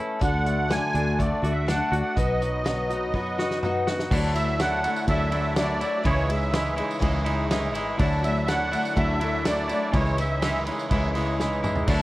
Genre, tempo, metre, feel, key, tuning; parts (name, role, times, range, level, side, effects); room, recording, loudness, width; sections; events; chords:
folk rock and heartland rock; 124 BPM; 4/4; straight; A4 = 440 Hz
picked twelve-string acoustic guitar; accompaniment; 0.0-12.0 s; B2 to A4; -29 LUFS; left 3 dB
twangy electric guitar; riff; 0.0-12.0 s; B2 to F#4; -29 LUFS; right 2 dB
musette accordion; melody; 0.2-10.6 s; C#5 to G#5; -28 LUFS; right 2 dB
tonewheel organ; sustained chords; 0.2-12.0 s; F#4 to D#6; -40 LUFS; equal
fingered electric bass; bass; 0.2-12.0 s; G#1 to F#2; -27 LUFS; equal
natural country drum kit; drums; 0.2-12.0 s; crash cymbal, hi-hat, kick drum, ride cymbal, snare drum, toms; -29 LUFS; equal
tambourine; percussion; 4.1-12.0 s; -46 LUFS; right 5 dB
little or no reverb; worn, warbling old tape, cassette tape, warbly pitch drift; -22 LUFS; side -17 dB against mid
0.0-4.1 A section; 4.1-12.0 B section
drum fill 3.1-4.1, 11.4-11.9
0.2 D; 2.2 B; 4.1 Dadd9; 6.1 C#madd9; 8.0 Dadd9; 9.9 C#madd9